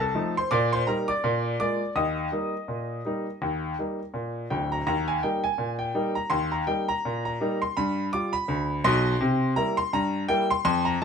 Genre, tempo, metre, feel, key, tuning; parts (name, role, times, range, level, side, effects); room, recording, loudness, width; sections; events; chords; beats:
ragtime piano; 83 BPM; 2/4; swing 57% on 16ths; Eb major; A4 = 439 Hz
clear upright piano; solo; 0.0-11.0 s; D1 to Eb6; -24 LUFS; equal
moderate studio reverb, RT60 0.6 s; minimal, uncompressed stereo recording; -24 LUFS; side -6 dB against mid
0.0-4.9 A section; 4.9-11.0 A section
0.0 F7; 0.5 Eb/Bb; 1.2 Bb7; 2.0 Eb; 7.8 G7; 9.2 C7
| 0.51 1.23 | 1.96 2.69 | 3.41 4.14 | 4.87 5.59 | 6.32 7.04 | 7.76 8.48 | 9.21 9.93 | 10.65